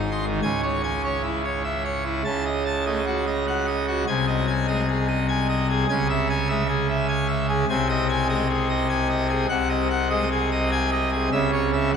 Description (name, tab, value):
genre	classical, organ toccata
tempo	99 BPM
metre	3/4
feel	straight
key	unclear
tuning	A4 = 440 Hz
part	pipe organ, full organ	solo	0.0-12.0 s	G#1 to B#5	-21 LUFS	equal	none
room	wet cathedral reverb, RT60 5.7 s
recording	none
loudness	-21 LUFS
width	side -7 dB against mid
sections	0.4-12.0 A section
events	none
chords	0.4 C#m; 2.3 D#m7b5/C#; 4.1 G#/B#; 5.9 C#m; 7.7 G#/B#; 9.5 G#7/B#; 11.3 C#m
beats	| 0.42 1.03 1.64 | 2.26 2.87 3.47 | 4.08 4.68 5.29 | 5.89 6.49 7.09 | 7.69 8.29 8.89 | 9.50 10.11 10.71 | 11.32 11.93